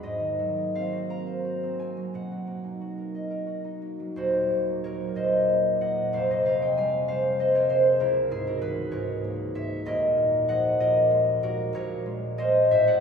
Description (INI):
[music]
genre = classical, solo harp piece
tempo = 55-66 BPM (dotted quarters)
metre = 6/8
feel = rubato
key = Eb dorian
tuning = A4 = 440 Hz
[part]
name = concert harp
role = solo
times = 0.0-13.0 s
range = Eb1 to Db6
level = -23 LUFS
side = equal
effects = none
[sound]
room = wet church reverb, RT60 2.7 s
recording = minimal, uncompressed stereo recording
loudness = -23 LUFS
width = side -6 dB against mid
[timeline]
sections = 0.0-4.2 A section; 4.2-13.0 B section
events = none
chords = 0.1 Ab9; 2.1 Bmaj7; 4.2 Ebm6; 6.1 Fm11; 8.0 Dbm6; 9.9 Ebm11; 11.7 Bbm7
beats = | 0.05 1.10 | 2.12 3.14 | 4.16 5.16 | 6.12 7.09 | 8.00 8.93 | 9.86 10.80 | 11.74 12.71